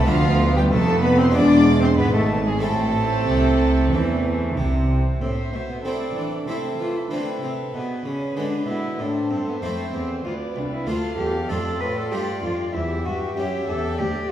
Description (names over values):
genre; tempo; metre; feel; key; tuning
classical, baroque-style concerto movement with solo episodes; 95 BPM; 4/4; straight; A minor; A4 = 440 Hz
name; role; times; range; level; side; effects
rich cello; melody; 0.0-14.3 s; F3 to B4; -24 LUFS; left 2 dB; none
warm chamber violin section; melody; 0.0-14.3 s; C5 to D6; -33 LUFS; equal; none
warm chamber violin section; second line; 0.0-14.3 s; F4 to F5; -30 LUFS; equal; none
dark chamber viola section; accompaniment; 0.0-14.3 s; G#3 to C5; -27 LUFS; right 2 dB; none
harpsichord; accompaniment; 0.0-14.3 s; C2 to F4; -29 LUFS; right 1 dB; none
warm chamber cello section; bass; 0.0-14.3 s; C2 to E3; -26 LUFS; right 2 dB; none
warm studio double bass section; bass; 0.0-5.2 s; E1 to E2; -23 LUFS; right 1 dB; none
room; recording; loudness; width
wet recital hall reverb, RT60 1.7 s; heard from further back in the room; -19 LUFS; side -11 dB against mid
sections
0.0-5.2 A section; 5.2-14.3 B section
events
none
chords
0.1 Bdim/D; 1.3 E; 2.6 Am; 7.7 G#dim/B; 9.0 Am; 10.2 Dm; 12.7 C#dim/E